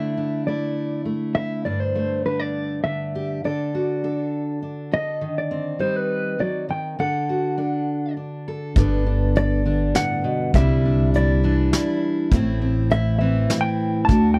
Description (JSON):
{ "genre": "acoustic folk duo or small band", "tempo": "101 BPM", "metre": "3/4", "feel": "straight", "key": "G major", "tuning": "A4 = 440 Hz", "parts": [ { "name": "mellow electric guitar", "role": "melody", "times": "0.0-14.4 s", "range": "B4 to A5", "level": "-28 LUFS", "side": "equal", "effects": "harmonic tremolo" }, { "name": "fingerpicked steel-string acoustic guitar", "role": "accompaniment", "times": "0.0-14.4 s", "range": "G2 to A4", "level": "-26 LUFS", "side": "equal", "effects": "none" }, { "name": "upright bass", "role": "bass", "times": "8.8-14.4 s", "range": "G1 to D2", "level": "-22 LUFS", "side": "equal", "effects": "none" }, { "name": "soft brush drum kit", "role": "drums", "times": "8.8-14.2 s", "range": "hi-hat, kick drum, snare drum", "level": "-22 LUFS", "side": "equal", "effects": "none" } ], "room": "small room reverb", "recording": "dry, close 1970s-style studio recording", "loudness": "-22 LUFS", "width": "mono", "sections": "0.0-8.8 A section; 8.8-14.4 B section", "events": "none", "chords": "0.0 Dsus2; 1.6 Gsus2; 3.4 D; 5.2 Cmadd9; 7.0 D; 8.8 Gadd9; 10.5 Cadd9; 12.3 Am" }